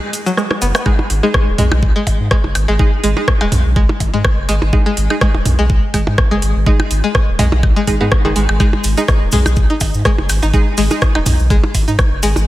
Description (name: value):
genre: minimal techno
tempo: 124 BPM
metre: 4/4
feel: swing 55% on 16ths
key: G# minor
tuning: A4 = 438 Hz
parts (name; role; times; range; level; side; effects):
- booming analog drum machine; drums; 0.1-12.3 s; hi-hat, rim click; -21 LUFS; equal; none
- cabasa; percussion; 0.1-0.8, 8.6-12.5 s; none; -28 LUFS; left 1 dB; none
- string-like resonator pluck; riff; 0.3-12.3 s; D#3 to D#4; -20 LUFS; left 1 dB; chorus, cassette tape, sidechain pumping, diffuse ambient delay
- electronic percussion blips and toms; percussion; 0.5-12.4 s; none; -22 LUFS; right 1 dB; diffuse ambient delay
- saturated sub bass; bass; 0.6-12.4 s; D#1 to G#2; -16 LUFS; equal; sidechain pumping
- wavetable chord stab; stabs; 0.9-11.0 s; G#3 to G#4; -22 LUFS; right 2 dB; diffuse ambient delay
- electronic kick drum; drums; 0.9-12.1 s; none; -14 LUFS; equal; none
room: light reverb, digital ambience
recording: none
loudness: -12 LUFS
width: side -16 dB against mid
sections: 0.9-12.5 A section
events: break 0.0-0.9; drum fill 0.4-0.9; drop 0.9-12.5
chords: 0.0 N.C.; 0.9 G#5